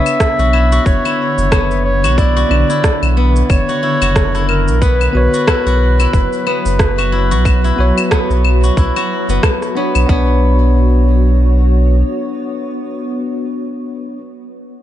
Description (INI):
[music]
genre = organic downtempo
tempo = 91 BPM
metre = 4/4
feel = swing 57% on 16ths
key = B harmonic minor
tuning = A4 = 440 Hz
[part]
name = warm clarinet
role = melody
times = 0.0-9.4 s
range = A#4 to E5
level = -19 LUFS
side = equal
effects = tape echo
[part]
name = bell-like tine electric piano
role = accompaniment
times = 0.0-14.2 s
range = B3 to C#5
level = -21 LUFS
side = left 1 dB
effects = sidechain pumping, digital delay
[part]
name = granular cloud pad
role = sustained chords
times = 0.0-13.5 s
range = D3 to C#5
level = -24 LUFS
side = left 1 dB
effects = built-in reverb, sidechain pumping
[part]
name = steel-string zither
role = arpeggios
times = 0.0-13.2 s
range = B3 to F#4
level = -21 LUFS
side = left 3 dB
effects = digital delay
[part]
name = electronic claves, cabasa and rim click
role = drums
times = 0.1-10.1 s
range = none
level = -20 LUFS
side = left 1 dB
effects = overdrive
[part]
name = electronic kick drum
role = drums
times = 0.2-10.2 s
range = none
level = -15 LUFS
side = equal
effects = overdrive
[part]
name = warm sub bass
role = bass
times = 0.4-12.0 s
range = F#1 to B1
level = -13 LUFS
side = equal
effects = sidechain pumping
[sound]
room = little or no reverb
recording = dark, warm production, nothing above 10.7 kHz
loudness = -11 LUFS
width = side -12 dB against mid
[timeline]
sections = 0.0-10.1 A section; 10.1-12.7 B section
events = none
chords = 0.0 Bmadd9; 4.8 F#sus4; 10.1 Bmadd9